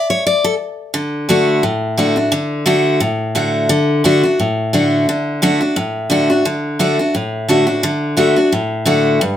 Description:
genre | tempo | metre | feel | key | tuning
bluegrass | 174 BPM | 4/4 | swing 55% on 8ths | D major | A4 = 440 Hz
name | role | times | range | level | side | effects
picked steel-string acoustic guitar | solo | 0.0-9.4 s | G2 to D5 | -13 LUFS | left 1 dB | none
room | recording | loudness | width
moderate studio reverb, RT60 0.6 s | none | -13 LUFS | side -10 dB against mid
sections
0.9-9.4 A section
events
none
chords
0.0 N.C.; 0.9 D

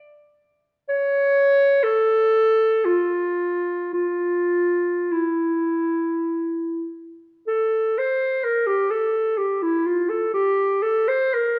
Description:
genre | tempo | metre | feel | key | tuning
classical, free, expressive piece for unaccompanied clarinet | 42-66 BPM | 3/4 | rubato | unclear | A4 = 441 Hz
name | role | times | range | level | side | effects
warm clarinet | solo | 0.9-11.6 s | E4 to C#5 | -21 LUFS | equal | none
room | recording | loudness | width
wet recital hall reverb, RT60 1.6 s | recorded in a church or concert hall | -21 LUFS | mono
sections
0.0-7.5 A section; 7.5-11.6 B section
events
none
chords
none

